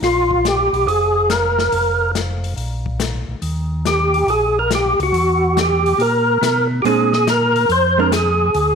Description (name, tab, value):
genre	soul jazz organ trio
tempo	141 BPM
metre	4/4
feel	swing 67% on 8ths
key	Bb mixolydian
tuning	A4 = 444 Hz
part	percussive tonewheel organ	melody	0.0-8.8 s	F4 to C5	-15 LUFS	equal	slow rotary speaker, overdrive, chorus vibrato
part	tonewheel organ	bass	0.0-8.8 s	F1 to B2	-21 LUFS	equal	slow rotary speaker
part	swinging big-band drum kit	drums	0.0-8.7 s	hi-hat, kick drum, snare drum	-26 LUFS	left 8 dB	none
part	hollow-body jazz guitar	accompaniment	6.9-8.1 s	Ab3 to D4	-20 LUFS	right 13 dB	none
room	moderate echo chamber reverb, RT60 1.3 s, studio reverb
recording	1960s-style stereo with parts hard left and right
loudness	-14 LUFS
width	side -6 dB against mid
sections	0.0-8.8 A section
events	none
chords	0.0 Bb5; 1.7 Fsus4; 2.6 N.C.; 3.4 Eb7; 5.1 Em; 6.8 Bb9